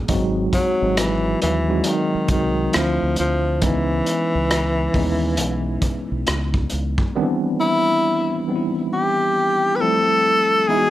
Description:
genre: R&B, neo-soul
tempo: 68 BPM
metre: 4/4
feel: swing 62% on 16ths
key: unclear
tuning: A4 = 440 Hz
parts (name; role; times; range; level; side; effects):
- tine electric piano; accompaniment; 0.0-10.9 s; D#3 to F#4; -23 LUFS; right 1 dB; overdrive, medium stereo tremolo, plate reverb
- deep dub fingered electric bass; bass; 0.0-7.0 s; G#1 to D#2; -24 LUFS; equal; none
- crunchy breakbeat drum kit; drums; 0.1-7.1 s; hi-hat, kick drum, rim click; -23 LUFS; equal; none
- breathy tenor saxophone; melody; 0.5-10.9 s; D#3 to B4; -20 LUFS; left 1 dB; plate reverb
room: moderate studio reverb, RT60 0.8 s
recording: none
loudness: -17 LUFS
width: side -14 dB against mid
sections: 0.0-7.1 A section; 7.1-10.9 B section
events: none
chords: 0.1 G#7; 2.7 Dm9; 3.6 C#m9; 7.1 Cmaj7; 9.8 Fmaj9

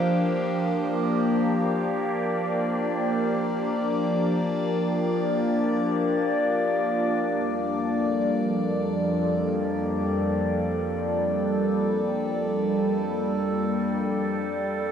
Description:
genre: ambient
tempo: free time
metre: none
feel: none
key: unclear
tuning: A4 = 440 Hz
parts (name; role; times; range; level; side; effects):
- evolving wavetable pad; solo; 0.0-14.9 s; F2 to D5; -23 LUFS; equal; phaser, built-in reverb
room: wet cathedral reverb, RT60 5.4 s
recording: dreamy mix soaked in reverb, cassette tape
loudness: -23 LUFS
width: side -8 dB against mid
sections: 0.0-7.2 A section; 7.2-14.9 B section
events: none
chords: 0.0 Bb6/F; 7.2 Gmadd9/F; 14.0 Fadd9

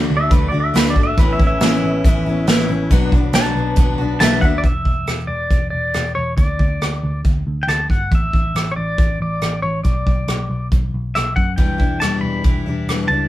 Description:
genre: folk rock and heartland rock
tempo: 138 BPM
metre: 4/4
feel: straight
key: unclear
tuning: A4 = 439 Hz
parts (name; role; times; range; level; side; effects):
- picked steel-string acoustic guitar; accompaniment; 0.0-4.7, 11.6-13.3 s; E2 to F#4; -21 LUFS; left 4 dB; none
- tonewheel organ; sustained chords; 0.0-4.6 s; F#3 to D5; -31 LUFS; equal; none
- picked electric bass; bass; 0.0-13.3 s; E1 to F#2; -22 LUFS; equal; none
- clean lap steel guitar; second line; 0.2-4.7 s; B4 to A5; -22 LUFS; right 1 dB; none
- soft brush drum kit; drums; 0.3-13.0 s; hi-hat, kick drum, rim click, snare drum; -17 LUFS; equal; none
- pedal steel guitar; melody; 4.2-13.3 s; C#5 to B5; -22 LUFS; equal; none
room: light reverb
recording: band playing live in one room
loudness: -15 LUFS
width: side -14 dB against mid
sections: 0.0-4.6 A section; 4.6-13.3 B section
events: electric slide guitar solo 0.0-4.6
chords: 0.0 D; 1.2 Aadd9; 2.9 Bm; 4.6 Dsus2/E; 6.4 G5; 8.1 A5; 9.9 Bm; 11.6 Em7

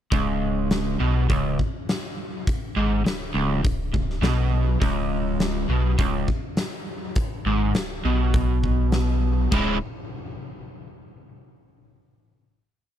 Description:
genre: classic rock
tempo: 102 BPM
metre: 4/4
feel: straight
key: unclear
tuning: A4 = 440 Hz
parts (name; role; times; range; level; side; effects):
- crunchy overdriven guitar; riff; 0.1-9.8 s; C#2 to E4; -24 LUFS; right 1 dB; none
- sub bass with octave; bass; 0.1-9.8 s; C#1 to B1; -25 LUFS; equal; none
- huge arena drum kit; drums; 0.1-9.7 s; crash cymbal, hi-hat, kick drum, snare drum; -26 LUFS; left 1 dB; none
room: little or no reverb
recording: none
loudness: -21 LUFS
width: side -10 dB against mid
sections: 0.1-9.5 verse; 9.5-11.9 final chord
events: none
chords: 0.1 C#5

